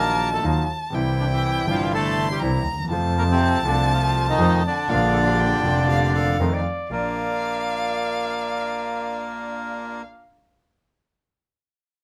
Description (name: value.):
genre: tango.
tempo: 121 BPM.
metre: 4/4.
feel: rubato.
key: Bb major.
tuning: A4 = 440 Hz.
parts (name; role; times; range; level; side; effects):
bandoneon; melody; 0.0-10.0 s; C3 to Bb4; -26 LUFS; equal; none.
warm violin; second line; 0.0-10.0 s; F5 to C6; -30 LUFS; equal; none.
warm concert grand piano; accompaniment; 0.0-10.0 s; F1 to F4; -30 LUFS; equal; none.
bandoneon; stabs; 0.0-10.0 s; Gb3 to F4; -35 LUFS; equal; none.
warm double bass; bass; 0.0-7.1 s; F1 to F2; -26 LUFS; equal; none.
clear clarinet; second line; 5.1-10.0 s; F4 to D5; -33 LUFS; equal; none.
room: moderate club reverb, RT60 0.7 s.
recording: none.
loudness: -22 LUFS.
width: mono.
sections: 0.0-6.9 A section; 6.9-10.9 B section.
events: none.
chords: 0.0 Ebmadd9; 0.9 C; 2.9 F; 4.9 Bb; 6.4 F7; 6.9 Bb.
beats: 0.45 | 0.94 1.43 1.93 2.42 | 2.91 3.40 3.90 4.39 | 4.89 5.39 5.89 6.40 | 6.90 7.40 7.89 8.38 | 8.87 9.37 9.86.